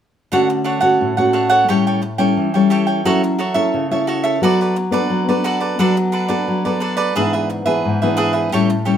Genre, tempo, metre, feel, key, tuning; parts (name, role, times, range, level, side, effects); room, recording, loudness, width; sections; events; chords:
samba; 88 BPM; 4/4; straight; D major; A4 = 442 Hz
cavaquinho; accompaniment; 0.3-9.0 s; D4 to G5; -19 LUFS; right 4 dB
nylon-string guitar; accompaniment; 0.3-9.0 s; G#2 to A4; -16 LUFS; left 2 dB
wet studio reverb, RT60 0.9 s; -15 LUFS; side -9 dB against mid
0.3-9.0 A section
0.3 Dmaj7; 1.7 A7; 3.1 F#m7; 4.4 D6/F#; 7.2 E7/G#